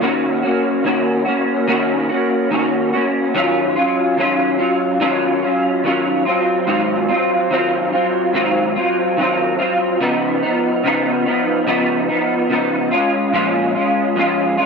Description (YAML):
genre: indie pop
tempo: 72 BPM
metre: 4/4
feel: swing 55% on 16ths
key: Eb minor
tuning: A4 = 440 Hz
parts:
  - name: electric guitar through a small old amp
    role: solo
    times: 0.0-14.7 s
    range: Ab2 to Gb4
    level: -15 LUFS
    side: equal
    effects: ensemble chorus, vibrato effect
room: moderate spring reverb, RT60 1.8 s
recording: none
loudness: -15 LUFS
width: side -5 dB against mid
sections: 0.0-3.3 A section; 3.3-14.7 B section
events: none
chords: 0.0 Ebm7; 3.3 Ebm9; 6.3 Ab6; 10.0 Db9; 12.9 Bbm7